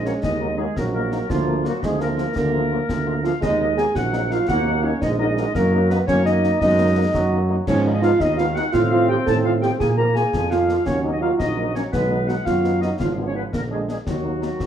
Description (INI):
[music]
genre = military-style march for wind band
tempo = 113 BPM (dotted quarters)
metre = 6/8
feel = straight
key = Eb minor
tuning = A4 = 439 Hz
[part]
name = mellow woodwind section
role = second line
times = 0.0-14.7 s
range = F4 to Bb5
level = -26 LUFS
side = left 3 dB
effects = none
[part]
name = warm euphonium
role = second line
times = 0.0-14.7 s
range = F3 to Bb4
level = -23 LUFS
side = right 3 dB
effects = none
[part]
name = clear French horn section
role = accompaniment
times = 0.0-14.5 s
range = F3 to F4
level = -31 LUFS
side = left 6 dB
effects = none
[part]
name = warm trombone section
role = sustained chords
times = 0.0-14.7 s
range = D3 to C4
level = -29 LUFS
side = right 1 dB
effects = none
[part]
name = warm tuba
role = bass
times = 0.0-14.7 s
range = Ab1 to Bb2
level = -23 LUFS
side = right 2 dB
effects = none
[part]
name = dark trumpet section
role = melody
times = 0.1-14.5 s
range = Bb4 to Ab5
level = -48 LUFS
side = equal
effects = none
[part]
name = concert snare drum, concert bass drum and clash cymbals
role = drums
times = 0.1-14.7 s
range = none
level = -29 LUFS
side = left 2 dB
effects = none
[sound]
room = moderate large studio reverb, RT60 1.1 s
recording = dark, warm production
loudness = -18 LUFS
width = side -9 dB against mid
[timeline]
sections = 0.0-14.7 A section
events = none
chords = 0.0 Ebm; 1.3 Bb/D; 3.4 Ebm; 5.5 Ebm/Gb; 7.7 Abm; 8.7 F7/A; 9.8 Bb7; 10.9 Ebm; 11.9 B; 13.0 Fdim/Ab; 13.5 Bb7; 14.1 Ebm